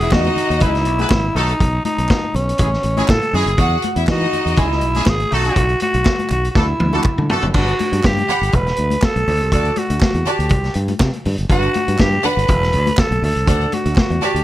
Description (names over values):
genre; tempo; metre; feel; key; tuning
disco; 121 BPM; 4/4; straight; E major, G major from 7.5 s; A4 = 440 Hz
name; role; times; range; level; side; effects
growling tenor saxophone; melody; 0.0-14.4 s; C#4 to B4; -20 LUFS; equal; plate reverb
clear studio string section; second line; 0.0-14.4 s; D4 to B5; -23 LUFS; right 1 dB; plate reverb, tape echo
fingered electric bass; bass; 0.0-14.4 s; E1 to E3; -19 LUFS; equal; none
vintage drum kit; drums; 0.0-14.4 s; crash cymbal, hi-hat, kick drum, snare drum, toms; -19 LUFS; equal; none
congas; percussion; 0.1-14.3 s; none; -28 LUFS; left 6 dB; none
group handclap; percussion; 0.1-14.1 s; none; -30 LUFS; right 4 dB; none
warm horn section; stabs; 0.6-7.5 s; G#3 to B4; -24 LUFS; equal; plate reverb
room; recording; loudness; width
light reverb; dark, warm production; -14 LUFS; side -14 dB against mid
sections
0.0-7.5 A section; 7.5-14.4 B section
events
drum fill 6.6-7.5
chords
0.0 Emaj7; 0.6 C#m7; 1.4 B; 2.6 A; 3.6 Emaj9; 4.6 C#m7; 5.3 B; 6.6 D; 7.5 Gmaj7; 8.5 E5; 9.3 D; 10.5 C5; 11.5 Gmaj7; 12.5 E5; 13.2 D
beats
0.12 0.61 1.11 | 1.60 2.10 2.59 3.09 | 3.58 4.08 4.58 5.07 | 5.57 6.06 6.56 7.05 | 7.54 8.04 8.53 9.03 | 9.52 10.02 10.51 11.00 | 11.50 11.99 12.49 12.98 | 13.47 13.97